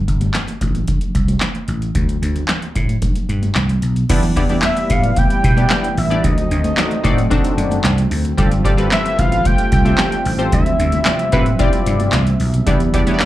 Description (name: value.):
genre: early-eighties boogie funk.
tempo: 112 BPM.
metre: 4/4.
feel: straight.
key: D dorian.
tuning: A4 = 440 Hz.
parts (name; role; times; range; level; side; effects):
vintage slap bass; bass; 0.1-13.1 s; G1 to B2; -17 LUFS; equal; none.
electro analog drum machine; drums; 0.1-13.3 s; crash cymbal, handclaps, hi-hat, kick drum, snare drum; -18 LUFS; equal; none.
congas; percussion; 0.2-13.3 s; none; -26 LUFS; right 2 dB; slapback echo.
funky polysynth comp; accompaniment; 4.1-13.3 s; B3 to E5; -21 LUFS; left 2 dB; chorus, slapback echo.
brassy analog pad; sustained chords; 4.1-13.3 s; C3 to E5; -24 LUFS; right 1 dB; chorus.
fat analog lead; melody; 4.7-12.1 s; Eb5 to G5; -21 LUFS; equal; chorus, slapback echo.
room: little or no reverb.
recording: live gig heard through the venue's PA, club reverb.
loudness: -14 LUFS.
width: side -14 dB against mid.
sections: 0.0-4.1 A section; 4.1-13.3 B section.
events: none.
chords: 0.0 Gsus24; 2.0 D7sus4; 4.1 Em7; 6.2 D7b9; 8.4 G9sus4; 10.5 Dm11; 12.7 Em7.